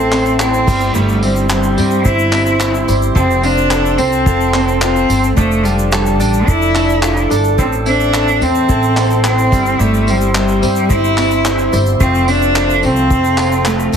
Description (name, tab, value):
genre	acoustic pop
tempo	109 BPM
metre	4/4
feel	straight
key	unclear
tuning	A4 = 440 Hz
part	clear cello	melody	0.0-14.0 s	G3 to E4	-15 LUFS	equal	none
part	picked acoustic archtop guitar	accompaniment	0.0-14.0 s	A2 to C5	-18 LUFS	equal	double-tracked left and right
part	glassy FM pad	sustained chords	0.2-14.0 s	G4 to D6	-26 LUFS	left 1 dB	ensemble chorus, built-in reverb
part	direct-recorded clean electric guitar	arpeggios	0.0-14.0 s	G3 to A4	-25 LUFS	right 7 dB	ping-pong delay
part	upright bass	bass	0.0-14.0 s	F1 to G2	-17 LUFS	equal	none
part	cloth-damped thuddy drum kit	drums	0.1-14.0 s	crash cymbal, handclaps, kick drum, tambourine	-19 LUFS	equal	none
part	egg shaker	percussion	0.3-14.0 s	none	-32 LUFS	left 10 dB	none
room	moderate studio ambience, RT60 0.5 s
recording	heavily compressed radio sound, multiband compression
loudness	-11 LUFS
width	side -7 dB against mid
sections	0.0-14.0 A section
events	none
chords	0.0 Am; 0.7 C/G; 3.2 F; 5.4 Dm/F; 7.6 Am; 9.5 C/G; 12.0 F